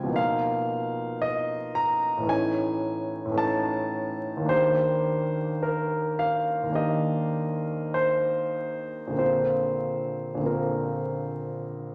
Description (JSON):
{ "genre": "classical, impressionist solo piano", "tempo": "46-58 BPM", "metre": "4/4", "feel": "rubato", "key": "unclear", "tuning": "A4 = 440 Hz", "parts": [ { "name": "clear concert grand piano", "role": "solo", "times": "0.0-11.9 s", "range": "Bb1 to F6", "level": "-27 LUFS", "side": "equal", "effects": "none" } ], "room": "wet recital hall reverb, RT60 1.4 s", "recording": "vinyl crackle", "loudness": "-27 LUFS", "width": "mono", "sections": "0.0-11.9 A section", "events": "none", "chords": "0.2 Bmaj7#11; 2.3 Amaj7#11; 4.5 Ebmaj7; 9.2 Bbadd9" }